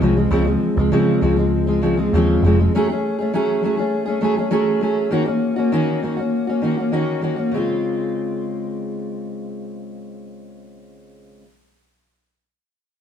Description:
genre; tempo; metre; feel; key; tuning
indie pop, bedroom pop; 100 BPM; 4/4; straight; Db major; A4 = 440 Hz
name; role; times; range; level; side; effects
fingerpicked steel-string acoustic guitar; accompaniment; 0.0-11.5 s; Db3 to Ab4; -18 LUFS; equal; vibrato effect
vintage muted picked electric bass; bass; 0.0-2.7 s; F1 to Db3; -19 LUFS; equal; none
room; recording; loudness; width
moderate studio reverb, RT60 1.0 s; band playing live in one room; -17 LUFS; side -8 dB against mid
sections
0.0-7.5 A section; 7.5-9.9 B section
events
none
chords
0.0 Dbmaj7; 2.7 Gbmadd9; 5.1 Ebm7; 7.5 Dbmaj7

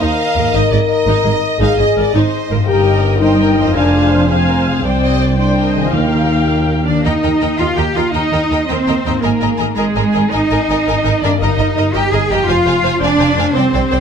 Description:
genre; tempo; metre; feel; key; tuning
cinematic, heroic adventure film score; 111 BPM (dotted quarters); 12/8; straight; Eb major; A4 = 440 Hz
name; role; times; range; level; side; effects
rich symphonic violin section; melody; 0.0-14.0 s; Ab4 to Ab5; -22 LUFS; left 1 dB; none
warm symphonic violin section; second line; 0.0-14.0 s; G4 to Bb5; -22 LUFS; left 1 dB; none
warm symphonic viola section; accompaniment; 0.0-14.0 s; Eb4 to F5; -22 LUFS; right 1 dB; none
warm French horn section; sustained chords; 0.0-6.8 s; C4 to Bb4; -16 LUFS; left 4 dB; none
concert harp; arpeggios; 0.0-14.0 s; F2 to C5; -22 LUFS; left 9 dB; none
rich symphonic cello section; bass; 0.0-14.0 s; C2 to Ab4; -17 LUFS; right 2 dB; none
rich symphonic double bass section; bass; 0.0-14.0 s; F1 to Eb2; -18 LUFS; right 3 dB; none
timpani; percussion; 5.9-6.5 s; Eb3; -25 LUFS; right 3 dB; none
room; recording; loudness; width
moderate scoring stage reverb, RT60 1.5 s; none; -12 LUFS; side -7 dB against mid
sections
0.0-7.1 A section; 7.1-14.0 A section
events
none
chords
0.0 Eb5; 0.5 Absus2; 2.7 Eb/G; 3.8 Fm; 4.8 Csus2; 5.9 Ebadd9; 7.1 Eb; 9.2 Absus2; 11.4 Eb/G; 12.5 Fm

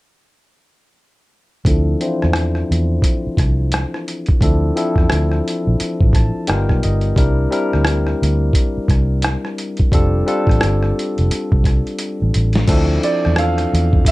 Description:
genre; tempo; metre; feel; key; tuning
R&B, neo-soul; 87 BPM; 4/4; swing 61% on 16ths; D minor; A4 = 440 Hz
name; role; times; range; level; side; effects
boom bap sampler-style drum kit; drums; 1.6-14.1 s; crash cymbal, hi-hat, kick drum, rim click, snare drum; -17 LUFS; equal; none
barky tine electric piano; accompaniment; 1.7-14.1 s; E3 to A5; -20 LUFS; left 2 dB; low-pass filter
vintage muted fingered electric bass; bass; 1.7-14.0 s; F1 to E2; -17 LUFS; equal; none
dark concert grand piano; melody; 13.0-14.1 s; D5 to F5; -20 LUFS; right 4 dB; none
room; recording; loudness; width
light reverb; dark, warm production; -14 LUFS; side -19 dB against mid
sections
1.6-12.7 A section; 12.7-14.1 B section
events
filter sweep on tine electric piano 1.6-12.7; tine electric piano fill 5.8-7.2; drum fill 12.0-12.7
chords
1.6 Dm9; 6.5 G7alt; 7.2 C7; 9.9 F69; 12.7 Dm9

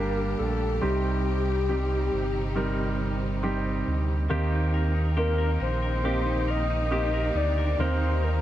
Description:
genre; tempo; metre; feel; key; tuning
pop; 69 BPM; 4/4; straight; unclear; A4 = 440 Hz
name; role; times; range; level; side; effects
soft octave-layered synth lead; melody; 0.0-8.4 s; G4 to Eb5; -30 LUFS; left 3 dB; chorus
clear baby grand piano; accompaniment; 0.0-8.4 s; C3 to Bb4; -30 LUFS; right 2 dB; none
warm symphonic string section; sustained chords; 0.0-8.4 s; C3 to G4; -35 LUFS; right 1 dB; none
sub bass with octave; bass; 0.0-8.4 s; G1 to Eb2; -27 LUFS; right 1 dB; none
clean electric guitar; arpeggios; 4.3-8.4 s; Eb3 to Bb4; -33 LUFS; left 2 dB; ping-pong delay
room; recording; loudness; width
light reverb; none; -24 LUFS; side -13 dB against mid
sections
0.0-4.3 A section; 4.3-8.4 B section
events
none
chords
0.0 Gm; 0.8 Cm; 4.3 Eb6

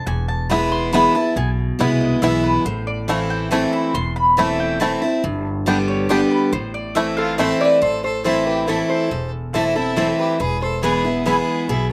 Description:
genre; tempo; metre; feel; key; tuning
bluegrass; 139 BPM; 3/4; straight; A minor; A4 = 440 Hz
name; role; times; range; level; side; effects
picked steel-string acoustic guitar; accompaniment; 0.0-11.9 s; E2 to G4; -22 LUFS; equal; none
mandolin; stabs; 0.0-11.4 s; A3 to C6; -25 LUFS; equal; none
upright bass; bass; 0.1-11.9 s; E1 to C2; -28 LUFS; equal; none
bluegrass banjo; melody; 0.5-7.5 s; A3 to G4; -24 LUFS; equal; none
lap resonator guitar; melody; 7.2-11.9 s; G#4 to D5; -24 LUFS; equal; none
clear fiddle; second line; 7.2-11.9 s; E4 to B4; -30 LUFS; equal; none
room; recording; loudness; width
little or no reverb; recorded outdoors, with no room sound; -19 LUFS; mono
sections
0.0-7.8 A section; 7.8-11.9 B section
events
mandolin solo 0.0-7.8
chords
0.1 E; 2.7 Am; 5.2 G; 6.5 Am; 10.4 E

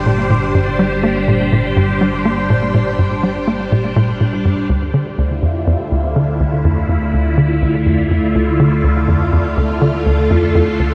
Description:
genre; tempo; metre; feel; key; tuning
ambient, sequencer-driven space music; 123 BPM; 4/4; straight; G dorian; A4 = 437 Hz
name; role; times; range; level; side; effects
phased string machine; sustained chords; 0.0-10.9 s; D3 to C5; -19 LUFS; equal; ensemble chorus, phaser
analog drone; bass; 0.0-10.9 s; G1 to D2; -26 LUFS; equal; chorus, tube saturation
tight sequencer bass; riff; 0.1-10.9 s; D2 to Bb3; -18 LUFS; equal; analog chorus, analog delay
room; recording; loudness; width
moderate huge ambient reverb, RT60 7.5 s; none; -15 LUFS; mono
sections
0.0-10.9 A section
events
filter sweep on analog synth bass 0.0-10.9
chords
0.0 Gm; 4.7 Dm7

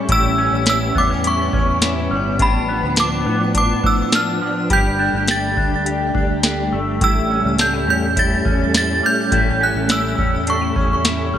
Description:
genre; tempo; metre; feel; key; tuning
dream pop; 104 BPM; 4/4; straight; unclear; A4 = 441 Hz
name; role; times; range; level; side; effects
synth chime; melody; 0.0-11.0 s; B5 to A6; -20 LUFS; right 1 dB; ensemble chorus, shimmer reverb, digital delay
soft string machine; sustained chords; 0.0-11.4 s; F3 to D4; -22 LUFS; equal; ensemble chorus, shimmer reverb
electric guitar with an envelope filter; arpeggios; 0.0-11.4 s; A2 to G4; -23 LUFS; left 3 dB; analog chorus, shimmer reverb, digital delay
fingered electric bass; bass; 0.1-11.4 s; G1 to A2; -24 LUFS; equal; none
booming analog drum machine; drums; 0.1-11.2 s; hi-hat, kick drum, snare drum, tambourine; -20 LUFS; equal; gated reverb
room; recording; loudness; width
moderate plate reverb, RT60 1.9 s; bright 1980s-style digital production; -15 LUFS; side -10 dB against mid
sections
0.0-11.4 A section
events
none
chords
0.0 A7; 2.4 Dm6/A; 4.7 Gsus2; 7.0 A7

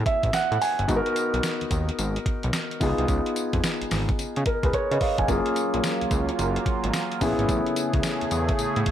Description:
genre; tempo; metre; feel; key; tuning
R&B, new jack swing; 109 BPM; 4/4; swing 64% on 16ths; unclear; A4 = 440 Hz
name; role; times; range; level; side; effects
dark grand piano; accompaniment; 0.0-8.9 s; A#3 to G#5; -25 LUFS; equal; none
fat analog bass; bass; 0.0-8.8 s; E#1 to C#3; -27 LUFS; equal; none
crisp 8-bit digital drum machine; drums; 0.1-8.9 s; hi-hat, kick drum, snare drum, tambourine; -28 LUFS; equal; none
sweeping resonant pad; sustained chords; 5.5-8.9 s; C#3 to G#4; -29 LUFS; right 3 dB; chorus
room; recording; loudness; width
light reverb, digital ambience; none; -22 LUFS; side -10 dB against mid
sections
0.0-8.9 A section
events
grand piano fill 0.0-0.9; drum fill 4.7-5.3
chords
0.0 Amaj7; 0.9 G#m7; 2.8 C#7; 5.3 F#maj7; 7.2 Amaj7

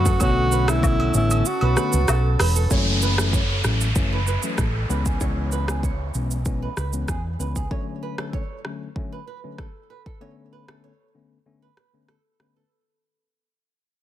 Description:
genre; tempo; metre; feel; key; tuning
afrobeats; 96 BPM; 4/4; straight; unclear; A4 = 440 Hz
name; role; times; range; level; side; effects
breathy alto saxophone; melody; 0.0-2.4 s; E4 to F#4; -25 LUFS; right 1 dB; digital delay
tine electric piano; accompaniment; 0.0-12.6 s; D3 to C#4; -30 LUFS; left 5 dB; none
deep dark ambient pad; sustained chords; 0.0-2.7 s; C#4 to A5; -34 LUFS; right 2 dB; chorus, built-in reverb
hollow-body short-scale fingered electric bass; bass; 0.0-7.7 s; E1 to F#2; -22 LUFS; equal; none
flamenco guitar; riff; 0.1-12.7 s; G#4 to C#5; -32 LUFS; right 8 dB; digital delay
afro-pop drum kit; drums; 0.1-12.5 s; hi-hat, kick drum, rim click, shaker; -25 LUFS; equal; soft clipping on snare
agogo bells and woodblock; percussion; 0.2-2.5 s; none; -31 LUFS; right 1 dB; none
downlifter; sound effects; 2.7-7.7 s; none; -29 LUFS; equal; none
room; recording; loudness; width
little or no reverb; dense, heavily limited modern master; -20 LUFS; side -12 dB against mid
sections
0.0-2.7 A section; 2.7-12.7 B section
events
kick muted 1.5-2.7; fade-out 2.7-12.7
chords
0.2 Bm9; 2.7 F#m7; 4.9 C#m7; 7.7 Dmaj7; 10.2 Bm9

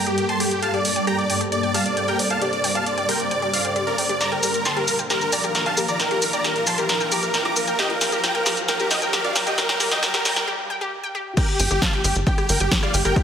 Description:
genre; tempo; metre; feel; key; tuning
uplifting trance; 134 BPM; 4/4; straight; G minor; A4 = 439 Hz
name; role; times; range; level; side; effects
dense compressed supersaw; melody; 0.0-13.2 s; G4 to D6; -23 LUFS; right 1 dB; sidechain pumping, digital delay
shimmering ambient pad; sustained chords; 0.0-13.2 s; Eb2 to F5; -29 LUFS; equal; chorus, built-in reverb, phaser, sidechain pumping
wide unison pluck; arpeggios; 0.0-13.1 s; G4 to G5; -29 LUFS; left 3 dB; sidechain pumping, digital delay
riser; sound effects; 0.9-10.5 s; none; -34 LUFS; equal; none
punchy analog drum machine; drums; 0.1-13.2 s; crash cymbal, hi-hat, rim click, shaker, snare drum; -23 LUFS; equal; high-pass filter on hats, high-pass filter on snare, high-pass filter on perc, high-pass filter on cymbals, high-pass filter on room
electronic kick drum; drums; 11.4-13.2 s; none; -20 LUFS; equal; none
tight sequencer bass; bass; 11.6-13.1 s; G1; -22 LUFS; equal; sidechain pumping
room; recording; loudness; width
moderate lush hall reverb, RT60 2.2 s; high-pass filter; -19 LUFS; side -8 dB against mid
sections
0.0-11.4 A section; 11.4-13.2 B section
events
build-up 0.0-11.4; filter sweep on synth pluck 0.0-11.4; filter sweep 0.0-11.4; riser 0.9-10.5; drum fill 4.2-10.5; break 10.5-11.4; drop 11.4-13.2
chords
0.0 Gmadd9; 4.2 Bb; 7.8 Ebmaj7; 11.4 Gmadd9

